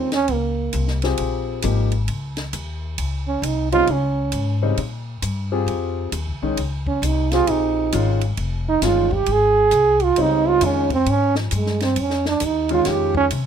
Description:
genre	modal jazz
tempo	134 BPM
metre	4/4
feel	swing 65% on 8ths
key	Bb dorian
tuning	A4 = 440 Hz
part	mellow trombone	second line	0.0-13.3 s	F3 to Ab4	-19 LUFS	right 5 dB	none
part	warm grand piano	accompaniment	0.0-13.3 s	Db3 to Ab4	-24 LUFS	left 5 dB	none
part	upright bass	bass	0.0-13.5 s	F1 to C3	-23 LUFS	left 1 dB	none
part	compact cocktail drum kit	drums	0.1-13.4 s	hi-hat, kick drum, ride cymbal, snare drum	-30 LUFS	equal	none
room	light reverb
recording	none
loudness	-18 LUFS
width	side -8 dB against mid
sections	0.0-13.5 A section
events	trombone solo 0.0-13.5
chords	0.0 Bbm11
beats	0.29 0.74 | 1.19 1.64 2.09 2.54 | 2.99 3.44 3.89 4.34 | 4.79 5.24 5.69 6.14 | 6.59 7.04 7.48 7.93 | 8.38 8.83 9.28 9.73 | 10.18 10.62 11.07 11.52 | 11.97 12.42 12.87 13.31

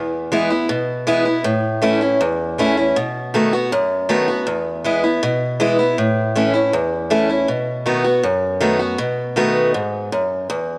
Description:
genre	rock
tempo	159 BPM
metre	4/4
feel	straight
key	unclear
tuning	A4 = 439 Hz
part	picked old ladder-braced acoustic guitar	solo	0.0-10.8 s	E2 to F#4	-19 LUFS	equal	none
room	moderate echo chamber reverb, RT60 2.0 s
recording	none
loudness	-19 LUFS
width	mono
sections	0.0-10.5 A section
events	none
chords	0.0 E; 1.5 A; 3.0 B7; 4.5 E; 6.0 A; 7.5 B7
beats	0.33 0.70 1.08 | 1.45 1.83 2.21 2.58 | 2.96 3.34 3.71 4.09 | 4.47 4.84 5.22 5.60 | 5.97 6.35 6.73 7.11 | 7.48 7.86 8.23 8.61 | 8.99 9.37 9.74 10.12 | 10.49

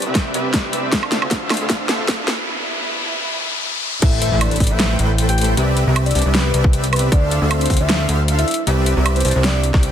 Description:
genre	future bass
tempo	155 BPM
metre	4/4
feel	swing 54% on 16ths, half-time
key	C major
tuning	A4 = 440 Hz
part	rich symphonic string section	sustained chords	0.0-4.0 s	C3 to B4	-31 LUFS	right 2 dB	sidechain pumping
part	dense compressed supersaw	riff	0.0-9.9 s	A3 to B5	-23 LUFS	equal	sidechain pumping, low-pass filter
part	fat analog bass	bass	0.0-9.9 s	A1 to D2	-19 LUFS	equal	sidechain pumping, high-pass filter
part	dubstep drum kit	drums	0.0-9.9 s	crash cymbal, hi-hat, snare drum, woodblock	-22 LUFS	equal	none
part	riser and impact	sound effects	0.3-5.6 s	none	-27 LUFS	left 1 dB	none
part	electronic kick drum	drums	0.2-9.8 s	none	-17 LUFS	equal	overdrive
part	soft octave-layered synth lead	melody	4.0-9.7 s	B4 to G5	-24 LUFS	left 1 dB	chorus, phaser, sidechain pumping, ping-pong delay
room	light reverb, digital ambience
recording	dense, heavily limited modern master, high-pass filter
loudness	-15 LUFS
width	side -9 dB against mid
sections	0.0-4.0 A section; 4.0-9.9 B section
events	build-up 0.0-4.0; drum fill 0.0-2.5; filter sweep on supersaw synth 0.0-4.0; filter sweep 0.0-4.0; riser 0.3-4.0; break 2.5-4.0; drop 4.0-9.9; impact 4.0-5.6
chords	0.0 Cmaj9; 0.9 Dm7; 2.3 Cmaj9; 4.0 Am7; 5.6 Cmaj9; 7.1 Dm7; 8.5 Cmaj9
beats	0.15 0.54 | 0.93 1.31 1.70 2.09 | 2.47 2.86 3.25 3.63 | 4.02 4.41 4.80 5.18 | 5.57 5.96 6.34 6.73 | 7.12 7.51 7.89 8.28 | 8.67 9.05 9.44 9.83

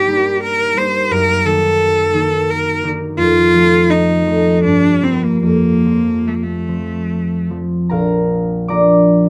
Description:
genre	classical, romantic duo for cello and harp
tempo	71-90 BPM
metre	3/4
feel	rubato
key	Bb major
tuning	A4 = 440 Hz
part	clear cello	melody	0.0-7.5 s	A3 to C5	-17 LUFS	equal	none
part	concert harp	accompaniment	0.0-9.3 s	Bb1 to D6	-18 LUFS	equal	none
room	light reverb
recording	close, detailed microphones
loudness	-15 LUFS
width	mono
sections	0.0-7.9 A section; 7.9-9.3 B section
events	none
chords	0.0 Eb/G; 1.1 Ebm/Gb; 3.2 F; 4.6 Gm7; 5.4 F; 7.9 Bb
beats	0.42 | 1.11 1.78 2.48 | 3.17 3.89 4.64 | 5.44 6.27 7.09 | 7.91 8.70

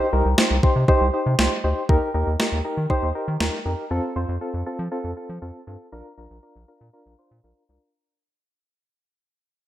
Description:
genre	synth-pop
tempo	119 BPM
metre	4/4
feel	straight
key	unclear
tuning	A4 = 440 Hz
part	soft electric-piano-like synth keys	accompaniment	0.0-7.9 s	C4 to C5	-24 LUFS	equal	chorus, tremolo, low-pass filter
part	round analog bass	bass	0.1-7.8 s	Bb1 to F3	-24 LUFS	equal	none
part	clean 12-bit digital drum machine	drums	0.4-3.5 s	kick drum, snare drum	-20 LUFS	equal	overdrive, gated reverb
room	moderate plate reverb, RT60 1.5 s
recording	bright 1980s-style digital production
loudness	-20 LUFS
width	side -13 dB against mid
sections	0.0-7.9 A section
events	fade-out 0.0-7.9; filter sweep on synth keys 0.0-7.9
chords	0.0 Cm; 1.9 Eb; 3.9 F; 5.9 Bb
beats	0.38 0.88 1.39 | 1.89 2.40 2.90 3.40 | 3.91 4.41 4.92 5.42 | 5.92 6.43 6.93 7.44

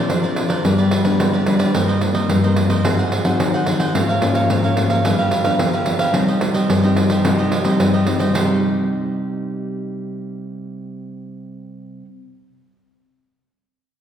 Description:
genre	samba and choro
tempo	109 BPM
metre	4/4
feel	straight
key	C minor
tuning	A4 = 437 Hz
part	cavaquinho	accompaniment	0.0-12.1 s	D4 to Gb5	-24 LUFS	right 2 dB	none
part	nylon-string guitar	accompaniment	0.0-12.1 s	G2 to Eb4	-18 LUFS	left 1 dB	none
part	pandeiro	percussion	0.1-8.5 s	none	-20 LUFS	right 2 dB	none
room	wet scoring stage reverb, RT60 1.8 s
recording	heard from further back in the room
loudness	-15 LUFS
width	side -9 dB against mid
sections	0.0-8.3 A section; 8.3-10.5 B section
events	none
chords	0.0 Bbadd9; 0.6 G; 1.7 Cm7/G; 2.8 Ab7; 3.9 Db6/Ab; 5.0 G7; 6.1 Cm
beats	0.10 0.65 1.20 | 1.75 2.30 2.85 3.40 | 3.95 4.50 5.05 5.60 | 6.14 6.70 7.25 7.79 | 8.34 8.89 9.44 9.99

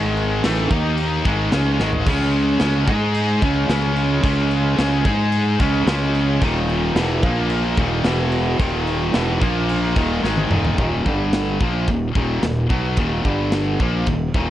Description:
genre	heavy metal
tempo	110 BPM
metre	4/4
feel	straight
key	Eb phrygian dominant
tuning	A4 = 444 Hz
part	pipe organ, principal chorus	sustained chords	0.0-10.8 s	Db4 to B5	-31 LUFS	left 1 dB	none
part	heavy high-gain guitar	riff	0.0-10.8 s	Eb2 to Ab4	-27 LUFS	equal	distortion
part	high-gain distorted guitar	riff	0.0-14.5 s	Eb2 to Ab4	-24 LUFS	left 7 dB	distortion
part	tight distorted guitar	riff	0.0-14.5 s	Eb2 to Ab4	-25 LUFS	right 7 dB	distortion
part	fuzz fingered electric bass	bass	0.0-14.5 s	Eb1 to Ab2	-22 LUFS	equal	overdrive
part	tight metal drum kit	drums	0.2-14.5 s	crash cymbal, kick drum, ride cymbal, snare drum, toms	-24 LUFS	equal	none
room	little or no reverb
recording	worn, warbling old tape, cassette tape, warbly pitch drift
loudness	-17 LUFS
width	side -12 dB against mid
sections	0.0-10.8 A section; 10.8-14.5 B section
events	drum fill 1.8, 10.2-10.8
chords	0.0 Ab5; 0.7 Eb5; 1.3 Ab5; 2.1 Db5; 2.9 Ab5; 3.4 Db5; 5.1 Ab5; 5.6 Db5; 6.4 Eb; 7.2 Bb5; 7.8 Eb; 8.1 E5; 8.6 Eb; 9.4 Bb5; 10.0 Eb; 10.8 Eb5; 11.1 G5; 11.6 Eb5; 13.3 G5; 13.8 Eb5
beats	0.44 0.98 1.52 | 2.07 2.61 3.15 3.70 | 4.24 4.79 5.33 5.87 | 6.42 6.96 7.51 8.05 | 8.60 9.15 9.69 10.24 | 10.79 11.33 11.88 12.43 | 12.98 13.53 14.07

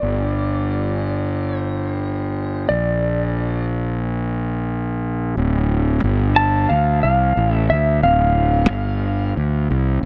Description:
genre	post-rock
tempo	90 BPM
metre	4/4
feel	straight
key	D minor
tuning	A4 = 442 Hz
part	clean lap steel guitar	melody	0.0-9.3 s	D5 to A5	-23 LUFS	equal	digital delay
part	fuzz fingered electric bass	bass	0.0-10.1 s	D1 to D2	-21 LUFS	equal	overdrive
room	digital ambience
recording	none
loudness	-20 LUFS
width	mono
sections	0.0-5.4 A section; 5.4-10.1 B section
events	none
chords	0.0 G5; 2.7 Bb; 5.4 Dm7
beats	| 0.02 0.69 1.36 2.03 | 2.69 3.36 4.03 4.70 | 5.37 6.03 6.70 7.37 | 8.03 8.70 9.37 10.03

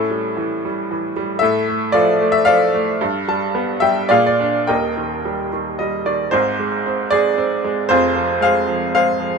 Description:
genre	classical, lyrical solo piano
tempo	113 BPM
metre	3/4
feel	rubato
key	Eb major from 4.7 s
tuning	A4 = 440 Hz
part	bright upright piano	solo	0.0-9.4 s	Eb1 to A5	-15 LUFS	equal	none
room	moderate studio reverb, RT60 0.6 s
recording	minimal, uncompressed stereo recording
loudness	-15 LUFS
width	side -5 dB against mid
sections	0.0-4.7 A section; 4.7-9.4 B section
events	upright piano fill 3.0-4.7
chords	0.0 A7; 1.4 Dm/A; 3.0 G; 4.1 Bb7; 4.7 Eb; 6.3 Ab; 7.9 Fm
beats	0.37 0.89 | 1.41 1.93 2.47 | 3.00 3.54 4.10 | 4.69 5.25 5.79 | 6.32 6.85 7.38 | 7.90 8.42 8.95

